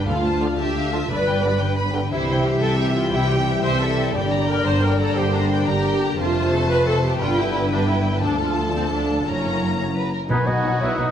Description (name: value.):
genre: cinematic.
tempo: 118 BPM (dotted quarters).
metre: 12/8.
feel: straight.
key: unclear.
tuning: A4 = 439 Hz.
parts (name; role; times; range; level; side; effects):
warm symphonic violin section; melody; 0.0-11.1 s; F#4 to B5; -29 LUFS; left 4 dB; none.
warm studio violin section; second line; 0.0-11.1 s; D#4 to G5; -28 LUFS; left 1 dB; none.
rich symphonic viola section; accompaniment; 0.0-11.1 s; F#3 to C5; -24 LUFS; right 1 dB; none.
concert harp; arpeggios; 0.0-11.1 s; F2 to D5; -30 LUFS; left 7 dB; none.
rich symphonic cello section; bass; 0.0-11.1 s; D2 to C3; -26 LUFS; right 2 dB; none.
warm symphonic double bass section; bass; 0.0-11.1 s; F1 to D2; -26 LUFS; right 2 dB; none.
bright trombone section; sustained chords; 0.4-10.7 s; B2 to A3; -29 LUFS; right 3 dB; none.
dark French horn section; sustained chords; 0.4-10.7 s; A3 to A4; -29 LUFS; left 3 dB; none.
timpani; percussion; 4.1-4.6, 10.3-10.8 s; G2 to B2; -28 LUFS; left 1 dB; none.
clear oboe; second line; 10.3-11.1 s; F#5 to G#5; -30 LUFS; right 1 dB; none.
mellow silver concert flute; second line; 10.3-11.1 s; B5 to D#6; -28 LUFS; equal; none.
warm clarinet; second line; 10.3-11.1 s; B4 to D#5; -26 LUFS; left 2 dB; none.
dark trumpet section; stabs; 10.3-11.1 s; D#4 to F#4; -26 LUFS; right 2 dB; none.
room: wet recital hall reverb, RT60 1.7 s.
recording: none.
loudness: -18 LUFS.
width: side -9 dB against mid.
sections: 0.0-10.3 A section.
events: none.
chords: 0.1 Dm; 1.1 G; 2.1 C; 4.1 Gm; 6.2 F; 7.2 G; 8.2 Dm; 9.3 F#7; 10.3 B.